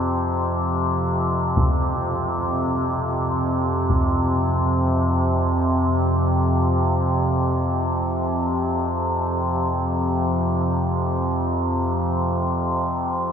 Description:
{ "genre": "dark ambient drone", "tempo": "free time", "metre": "none", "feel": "none", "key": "unclear", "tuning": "A4 = 438 Hz", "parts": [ { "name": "overtone-sweeping drone", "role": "drone", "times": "0.0-13.3 s", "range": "F2 to C3", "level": "-20 LUFS", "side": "equal", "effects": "chorus, built-in reverb" }, { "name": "taiko ensemble", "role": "percussion", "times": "1.6-4.1 s", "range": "none", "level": "-26 LUFS", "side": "equal", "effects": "none" } ], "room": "wet huge ambient reverb, RT60 7.6 s", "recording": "none", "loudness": "-19 LUFS", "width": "side -7 dB against mid", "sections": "0.0-13.3 A section", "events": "none", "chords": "0.0 F5" }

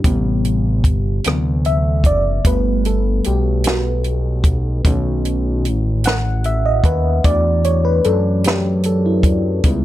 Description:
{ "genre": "slow six-eight R&B", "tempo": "50 BPM (dotted quarters)", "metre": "6/8", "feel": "straight", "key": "unclear", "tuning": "A4 = 440 Hz", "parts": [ { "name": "mellow FM electric piano", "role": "accompaniment", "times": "0.0-9.8 s", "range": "C3 to F#5", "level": "-19 LUFS", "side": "equal", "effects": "chorus, phaser" }, { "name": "compact cocktail drum kit", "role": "drums", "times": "0.0-9.8 s", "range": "hi-hat, kick drum, rim click, snare drum", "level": "-17 LUFS", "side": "equal", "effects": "none" }, { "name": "fat analog bass", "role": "bass", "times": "0.1-9.8 s", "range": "F#1 to F#2", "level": "-18 LUFS", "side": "equal", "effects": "none" } ], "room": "little or no reverb", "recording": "none", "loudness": "-14 LUFS", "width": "side -14 dB against mid", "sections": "0.0-9.8 A section", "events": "FM electric piano solo 0.0-9.8", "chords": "0.0 Am9; 1.2 D13; 2.4 Gmaj9; 4.8 B7; 7.2 E9sus4" }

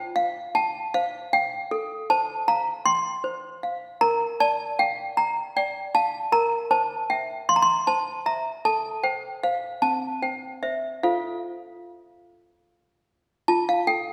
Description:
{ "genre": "classical, lullaby for toy piano", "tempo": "52 BPM (dotted quarters)", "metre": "6/8", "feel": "rubato", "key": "F major", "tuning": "A4 = 439 Hz", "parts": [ { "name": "toy piano", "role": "solo", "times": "0.0-14.1 s", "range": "C4 to C6", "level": "-25 LUFS", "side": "equal", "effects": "none" } ], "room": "wet scoring stage reverb, RT60 1.7 s", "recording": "none", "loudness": "-25 LUFS", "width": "mono", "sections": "0.0-13.5 A section", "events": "none", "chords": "0.0 F5; 1.7 F/A; 4.0 Gm7/Bb; 6.3 C7/Bb; 8.7 Am7; 9.8 N.C.; 11.0 F" }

